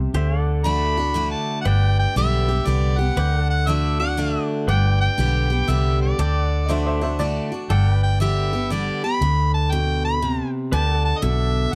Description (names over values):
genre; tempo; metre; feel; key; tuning
honky-tonk and classic country; 119 BPM; 3/4; swing 65% on 8ths; G major; A4 = 440 Hz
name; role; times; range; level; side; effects
warm harmonica; melody; 0.0-11.7 s; G4 to B5; -27 LUFS; equal; none
picked steel-string acoustic guitar; accompaniment; 0.0-11.7 s; G2 to G4; -27 LUFS; equal; none
pedal steel guitar; sustained chords; 0.0-11.8 s; G4 to G5; -35 LUFS; equal; none
vintage muted fingered electric bass; bass; 0.0-11.7 s; G1 to D2; -23 LUFS; equal; none
clear upright piano; second line; 6.7-7.6 s; C5 to E5; -30 LUFS; equal; none
room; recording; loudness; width
little or no reverb; close, detailed microphones; -21 LUFS; mono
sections
0.0-1.7 A section; 1.7-11.8 B section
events
harmonica solo 0.0-1.7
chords
0.1 D; 1.7 G; 3.2 D; 4.7 G; 6.2 D; 7.7 G; 10.7 D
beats
| 0.14 0.65 1.15 | 1.66 2.16 2.66 | 3.17 3.67 4.18 | 4.68 5.18 5.69 | 6.19 6.70 7.20 | 7.70 8.21 8.71 | 9.21 9.72 10.22 | 10.72 11.23 11.73